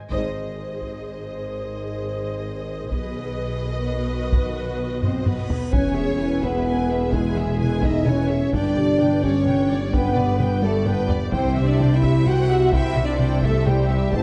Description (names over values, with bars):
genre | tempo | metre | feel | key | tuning
cinematic, epic orchestral film score | 128 BPM | 3/4 | straight | unclear | A4 = 440 Hz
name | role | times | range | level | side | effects
rich symphonic violin section | melody | 0.1-14.2 s | D5 to A5 | -37 LUFS | equal | none
rich symphonic violin section | second line | 0.1-14.2 s | G4 to F#5 | -35 LUFS | equal | none
dark symphonic viola section | accompaniment | 0.1-14.2 s | D4 to E5 | -34 LUFS | equal | none
mellow French horn section | sustained chords | 0.1-14.2 s | Eb3 to C5 | -26 LUFS | equal | none
clear symphonic cello section | bass | 0.1-14.2 s | E2 to C3 | -30 LUFS | equal | none
rich symphonic double bass section | bass | 0.1-14.2 s | E1 to C2 | -30 LUFS | equal | none
taiko ensemble | drums | 0.1-14.2 s | none | -27 LUFS | equal | none
reverse cymbal and impact | sound effects | 5.4-7.1 s | none | -38 LUFS | equal | none
dark tuba | bass | 5.7-14.2 s | E1 to C2 | -30 LUFS | equal | none
room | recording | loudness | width
wet scoring stage reverb, RT60 1.6 s | dark, warm production, nothing above 10.3 kHz | -21 LUFS | mono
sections
0.1-5.7 A section; 5.7-14.2 B section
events
band accent 0.1-0.6; drum fill 5.0-5.7, 10.6-11.3; reverse cymbal 5.4; impact 5.7-7.1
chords
0.1 Ab; 2.9 B; 5.7 E; 8.5 G; 11.3 C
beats
| 0.11 0.58 1.05 | 1.52 1.99 2.45 | 2.92 3.39 3.86 | 4.33 4.80 5.26 | 5.73 6.20 6.67 | 7.13 7.60 8.07 | 8.54 9.00 9.47 | 9.94 10.40 10.87 | 11.34 11.80 12.27 | 12.74 13.20 13.67 | 14.14